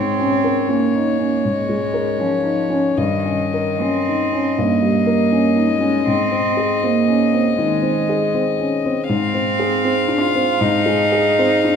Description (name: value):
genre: classical, slow romantic movement for piano trio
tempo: 79 BPM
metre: 4/4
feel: rubato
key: Ab major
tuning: A4 = 440 Hz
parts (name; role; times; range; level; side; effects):
- dark violin; melody; 0.0-11.8 s; Db5 to F5; -22 LUFS; left 5 dB; none
- warm cello; second line; 0.0-11.8 s; Eb3 to F4; -20 LUFS; right 5 dB; none
- warm concert grand piano; accompaniment; 0.0-11.8 s; G2 to Bb4; -19 LUFS; left 2 dB; none
room: wet recital hall reverb, RT60 1.7 s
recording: minimal, uncompressed stereo recording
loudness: -15 LUFS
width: side -7 dB against mid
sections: 0.0-11.8 A section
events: none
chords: 0.0 Bbm7/Ab; 3.0 Eb7/G; 6.1 Ab; 9.1 Fm/Ab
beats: 0.69 1.45 2.20 | 2.97 3.82 4.59 5.33 | 6.08 6.84 7.59 8.35 | 9.10 9.84 10.59 11.37